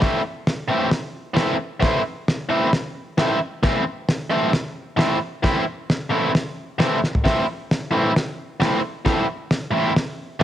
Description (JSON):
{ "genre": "garage rock duo or trio", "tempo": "133 BPM", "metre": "4/4", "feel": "straight", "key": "A minor", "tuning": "A4 = 440 Hz", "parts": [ { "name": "biting overdriven guitar", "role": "riff", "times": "0.0-10.4 s", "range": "A2 to E4", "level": "-21 LUFS", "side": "equal", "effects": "cassette tape" }, { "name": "cloth-damped thuddy drum kit", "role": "drums", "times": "0.0-10.4 s", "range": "hi-hat, kick drum, snare drum, toms", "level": "-22 LUFS", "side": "equal", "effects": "cassette tape" } ], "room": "light reverb, studio reverb", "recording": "home recording on cassette", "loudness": "-19 LUFS", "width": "side -12 dB against mid", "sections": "0.0-10.4 A section", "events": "drum fill 7.0", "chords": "0.0 Am", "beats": "| 0.02 0.47 0.92 1.37 | 1.82 2.28 2.73 3.18 | 3.63 4.08 4.54 4.99 | 5.44 5.89 6.34 6.80 | 7.25 7.70 8.15 8.61 | 9.06 9.51 9.96 10.42" }